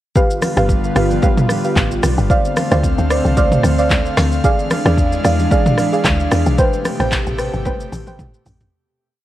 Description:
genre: amapiano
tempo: 112 BPM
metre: 4/4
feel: swing 55% on 16ths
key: A minor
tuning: A4 = 440 Hz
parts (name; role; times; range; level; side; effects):
- airy breathy pad; sustained chords; 0.2-8.7 s; B2 to F5; -21 LUFS; equal; chorus
- deep mellow chord stab; stabs; 0.2-8.2 s; G4 to G5; -20 LUFS; right 2 dB; chorus, tape echo
- deep house drum kit; drums; 0.2-8.7 s; handclaps, hi-hat, kick drum, rim click, shaker, snare drum, toms; -18 LUFS; equal; none
- congas; percussion; 0.2-8.6 s; none; -27 LUFS; left 2 dB; none
- woody log drum bass; bass; 0.6-8.7 s; G1 to E2; -18 LUFS; equal; none
room: little or no reverb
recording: worn, warbling old tape, cassette tape, warbly pitch drift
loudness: -13 LUFS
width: side -14 dB against mid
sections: 0.2-8.7 drop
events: drop 0.2-8.7; fade-out 6.6-8.7; drum fill 7.7-8.7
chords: 0.2 G7; 2.3 Dm7; 4.4 E7b9; 6.6 Am9

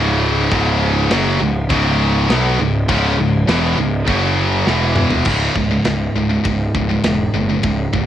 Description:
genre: heavy metal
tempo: 101 BPM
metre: 4/4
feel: straight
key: C# minor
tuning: A4 = 444 Hz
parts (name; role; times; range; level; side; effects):
- distorted electric guitar; riff; 0.0-5.3 s; C#2 to B3; -22 LUFS; equal; overdrive, cassette tape
- heavy high-gain guitar; riff; 0.0-8.1 s; C#2 to B3; -20 LUFS; left 7 dB; distortion, cassette tape
- high-gain distorted guitar; riff; 0.0-8.1 s; C#2 to B3; -21 LUFS; right 7 dB; distortion, cassette tape
- fuzz picked electric bass; bass; 0.0-8.1 s; C#1 to B1; -19 LUFS; equal; overdrive
- tight metal drum kit; drums; 0.5-8.1 s; crash cymbal, kick drum, ride cymbal, snare drum, toms; -22 LUFS; equal; cassette tape
room: light reverb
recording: home recording on cassette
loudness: -14 LUFS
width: side -11 dB against mid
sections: 0.0-5.3 A section; 5.3-8.1 B section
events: drum fill 4.7-5.3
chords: 0.0 C#m; 4.1 F#5; 4.7 E5; 5.3 C#5

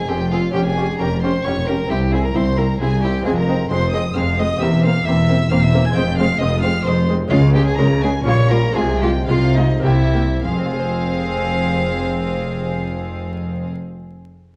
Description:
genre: classical, baroque-style concerto movement with solo episodes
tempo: 97-134 BPM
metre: 3/4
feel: straight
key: F minor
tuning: A4 = 441 Hz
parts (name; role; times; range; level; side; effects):
- rich chamber violin section; melody; 0.0-13.7 s; Eb5 to Ab6; -32 LUFS; equal; none
- rich violin; melody; 0.0-13.7 s; Eb4 to Ab5; -26 LUFS; equal; none
- lute; accompaniment; 0.0-14.0 s; E2 to C5; -30 LUFS; equal; none
- dark chamber cello section; bass; 0.0-13.7 s; C2 to Db3; -23 LUFS; equal; transformer saturation
- warm studio double bass section; bass; 0.0-13.7 s; E1 to Db2; -24 LUFS; equal; transformer saturation
- warm chamber violin section; second line; 0.1-13.7 s; C4 to Ab4; -28 LUFS; equal; none
- dark chamber viola section; accompaniment; 0.1-13.7 s; G3 to Db4; -29 LUFS; equal; none
room: wet recital hall reverb, RT60 1.6 s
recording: worn, warbling old tape, cassette tape, vinyl crackle, warbly pitch drift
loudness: -18 LUFS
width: mono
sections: 0.0-10.4 A section; 10.4-14.2 B section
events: slowing down 6.6-10.4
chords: 0.0 Fm; 0.5 Bbm13/F; 1.9 C; 3.3 Fm; 4.6 C7/E; 6.0 Fm; 7.3 Db; 8.3 Gm7b5/Bb; 8.8 Fm/C; 9.8 C7; 10.4 Fm

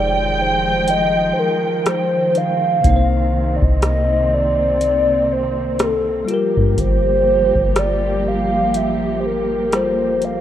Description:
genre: contemporary R&B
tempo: 61 BPM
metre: 4/4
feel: swing 58% on 16ths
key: F dorian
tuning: A4 = 440 Hz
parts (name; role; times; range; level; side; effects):
- hollow clarinet-like synth lead; melody; 0.0-10.4 s; A4 to F5; -18 LUFS; equal; chorus, phaser
- bell-like tine electric piano; accompaniment; 0.0-10.4 s; C3 to C5; -26 LUFS; left 6 dB; auto-pan
- dark studio string section; sustained chords; 0.0-10.4 s; C3 to G5; -21 LUFS; right 2 dB; none
- soft 808-style bass; bass; 0.0-10.4 s; F1 to G2; -22 LUFS; equal; none
- booming analog drum machine; drums; 0.9-10.4 s; hi-hat, kick drum, rim click; -21 LUFS; equal; vintage 12-bit sampler grit
room: light reverb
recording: rough home demo mix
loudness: -15 LUFS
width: side -11 dB against mid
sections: 0.0-10.4 A section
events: none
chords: 0.0 Fm9; 2.8 Cm9; 6.3 Gm9

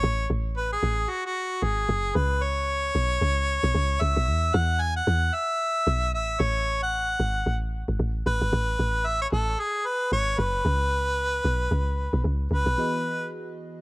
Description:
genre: amapiano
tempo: 113 BPM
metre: 4/4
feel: swing 58% on 16ths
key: unclear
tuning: A4 = 440 Hz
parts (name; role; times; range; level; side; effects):
- bright harmonica; melody; 0.0-13.3 s; F#4 to G#5; -26 LUFS; equal; cassette tape, analog delay
- woody log drum bass; bass; 0.0-12.8 s; F#1 to E2; -25 LUFS; equal; none
- FM electric piano with soft pad layer; accompaniment; 12.8-13.8 s; E3 to D#5; -32 LUFS; equal; chorus, cassette tape
room: light reverb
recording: home recording on cassette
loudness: -23 LUFS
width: side -23 dB against mid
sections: 0.0-12.8 A section; 12.8-13.8 B section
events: drop 0.0-12.8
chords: 0.0 F#madd9; 2.2 Bsus2; 4.3 E5; 6.1 F#madd9; 8.3 F#madd9 (rootless); 10.7 Bsus2; 12.8 Emaj7

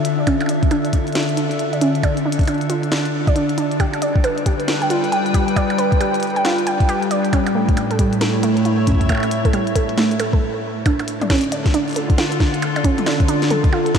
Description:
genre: IDM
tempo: 136 BPM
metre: 4/4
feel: swing 62% on 16ths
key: D melodic minor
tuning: A4 = 440 Hz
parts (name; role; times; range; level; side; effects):
- glassy FM pad; sustained chords; 0.0-14.0 s; A2 to G5; -20 LUFS; left 1 dB; ensemble chorus, built-in reverb, shimmer reverb
- glitchy drum kit; drums; 0.0-14.0 s; hi-hat, percussion blips, snare drum, toms; -26 LUFS; equal; overdrive, tape echo
- warbly dusty pluck; arpeggios; 0.2-14.0 s; G3 to G5; -21 LUFS; right 3 dB; chorus, vintage 12-bit sampler grit, tape echo, shimmer reverb
- electronic kick drum; drums; 0.3-14.0 s; none; -17 LUFS; left 1 dB; overdrive
room: wet huge ambient reverb, RT60 8.3 s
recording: dreamy mix soaked in reverb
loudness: -16 LUFS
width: side -7 dB against mid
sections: 0.0-10.9 A section; 10.9-14.0 B section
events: stop 10.4-10.9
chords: 0.0 Dmadd9; 3.8 Gadd9; 7.3 A; 10.9 Dm

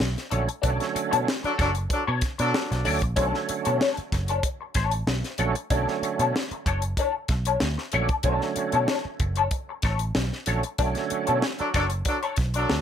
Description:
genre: funk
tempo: 94 BPM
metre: 4/4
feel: straight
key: B minor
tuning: A4 = 440 Hz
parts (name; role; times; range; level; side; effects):
- clean electric guitar; accompaniment; 0.0-12.7 s; D4 to D5; -27 LUFS; left 6 dB; wah, ensemble chorus
- vintage muted picked electric bass; bass; 0.0-12.8 s; F#1 to B2; -27 LUFS; right 1 dB; none
- tight funk drum kit; drums; 0.0-12.8 s; hi-hat, kick drum, snare drum; -28 LUFS; equal; none
- overdriven tonewheel organ; stabs; 0.3-11.5 s; D3 to C#4; -29 LUFS; right 6 dB; chorus vibrato, slow rotary speaker, analog delay
- warm horn section; second line; 1.4-2.8, 11.6-12.8 s; F#3 to A4; -26 LUFS; equal; none
room: light reverb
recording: none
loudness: -23 LUFS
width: side -8 dB against mid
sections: 0.0-12.8 A section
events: band accent 0.6-3.2, 10.8-12.8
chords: 0.0 Bm9

